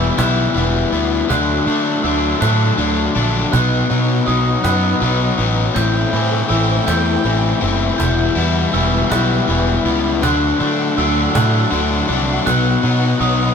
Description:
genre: post-rock.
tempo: 54 BPM (dotted quarters).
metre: 6/8.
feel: straight.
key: E minor.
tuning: A4 = 441 Hz.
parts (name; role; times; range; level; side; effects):
warm studio string section; sustained chords; 0.0-13.5 s; D4 to G5; -27 LUFS; right 1 dB; none.
glockenspiel with soft plastic mallets; arpeggios; 0.0-13.5 s; D#6 to G6; -24 LUFS; right 5 dB; none.
twangy electric guitar; arpeggios; 0.0-13.5 s; E2 to D#4; -24 LUFS; equal; none.
overdriven electric guitar; riff; 0.0-13.5 s; A2 to E4; -18 LUFS; left 6 dB; none.
fuzz fingered electric bass; bass; 0.0-13.5 s; E1 to D3; -19 LUFS; right 1 dB; overdrive.
cajon; drums; 0.2-13.3 s; none; -24 LUFS; right 2 dB; none.
room: moderate studio reverb, RT60 0.5 s.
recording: band playing live in one room.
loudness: -14 LUFS.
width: side -6 dB against mid.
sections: 0.0-13.5 A section.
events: none.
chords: 0.0 Emadd9; 1.3 D; 3.5 B; 5.8 Am7; 8.0 Emadd9; 10.2 D; 12.5 B.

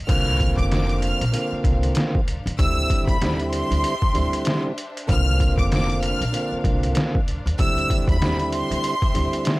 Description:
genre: hip hop, boom-bap hip-hop.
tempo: 96 BPM.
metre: 4/4.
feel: swing 57% on 16ths.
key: unclear.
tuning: A4 = 441 Hz.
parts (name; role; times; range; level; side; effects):
clear studio violin section; melody; 0.1-9.6 s; B5 to F6; -26 LUFS; equal; none.
tonewheel organ; accompaniment; 0.1-9.6 s; D3 to F4; -26 LUFS; right 1 dB; stopped rotary speaker, cassette tape.
warm studio string section; sustained chords; 0.1-9.6 s; D4 to F5; -35 LUFS; left 2 dB; none.
upright bass; bass; 0.1-9.4 s; F1 to Eb2; -24 LUFS; equal; tube saturation.
trip hop sampler-style drum kit; drums; 0.1-9.6 s; crash cymbal, hi-hat, kick drum, snare drum; -22 LUFS; equal; overdrive.
room: little or no reverb.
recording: dry, gritty hardware recording, vinyl crackle.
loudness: -19 LUFS.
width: side -21 dB against mid.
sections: 0.1-9.6 A section.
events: none.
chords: 0.1 C9sus4; 2.6 D9sus4; 5.1 C9sus4; 7.6 D9sus4.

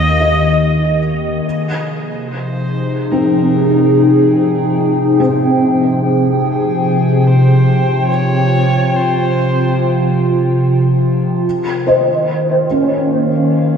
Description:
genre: ambient.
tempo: 72 BPM.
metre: 3/4.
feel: straight.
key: unclear.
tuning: A4 = 439 Hz.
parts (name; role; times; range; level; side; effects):
warm electric violin; melody; 0.0-10.2 s; Ab4 to Eb5; -23 LUFS; equal; diffuse ambient delay.
warbly tape-like pad; sustained chords; 0.0-13.8 s; C3 to G5; -13 LUFS; equal; chorus, built-in reverb, phaser.
felt-muted upright piano; arpeggios; 0.0-13.8 s; C4 to Eb5; -18 LUFS; equal; ensemble chorus, diffuse ambient delay.
warm sub bass; bass; 0.0-1.4 s; Eb2; -21 LUFS; equal; none.
room: wet lush hall reverb, RT60 2.8 s.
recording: dreamy mix soaked in reverb.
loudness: -11 LUFS.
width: side -7 dB against mid.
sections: 0.0-1.4 A section; 1.4-13.8 B section.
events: fade-in on electric violin 1.4-13.8.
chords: 0.0 Eb7; 1.4 Fm7; 11.4 Eb7.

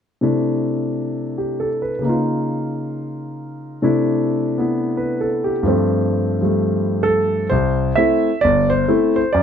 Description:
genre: solo jazz.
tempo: 131 BPM.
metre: 4/4.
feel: swing 66% on 8ths, rubato.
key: C major.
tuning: A4 = 439 Hz.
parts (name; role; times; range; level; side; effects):
warm concert grand piano; solo; 0.2-9.4 s; G1 to E5; -17 LUFS; equal; none.
room: moderate club reverb, RT60 0.6 s.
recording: dark, warm production.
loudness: -16 LUFS.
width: side -8 dB against mid.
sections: 0.2-7.5 A section; 7.5-9.4 B section.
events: none.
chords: 0.2 C69; 2.0 Db69; 3.8 C69; 5.6 G9sus4; 7.5 C6.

